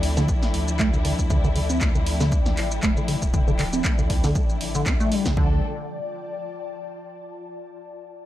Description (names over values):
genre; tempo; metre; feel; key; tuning
acid house; 118 BPM; 4/4; swing 55% on 16ths; D minor; A4 = 440 Hz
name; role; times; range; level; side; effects
warm studio string section; sustained chords; 0.0-5.6 s; F3 to A4; -32 LUFS; left 1 dB; vintage 12-bit sampler grit, sidechain pumping
saturated sub bass; bass; 0.0-5.6 s; D1 to D2; -27 LUFS; equal; sidechain pumping
punchy analog drum machine; drums; 0.0-5.3 s; handclaps, hi-hat, shaker, snare drum; -30 LUFS; equal; none
ethereal airy pad; texture; 0.0-7.4 s; F3 to A5; -32 LUFS; left 3 dB; ensemble chorus, built-in reverb, sidechain pumping
acid bass, square; riff; 0.2-5.6 s; C3 to D4; -26 LUFS; right 1 dB; tube saturation, ensemble chorus, sidechain pumping, analog delay
electronic kick drum; drums; 0.3-5.5 s; none; -23 LUFS; equal; none
room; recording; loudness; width
digital ambience; dry, gritty hardware recording; -20 LUFS; side -13 dB against mid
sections
0.0-5.4 A section; 5.4-7.4 B section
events
filter sweep on acid bass 0.0-5.4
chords
0.0 Dm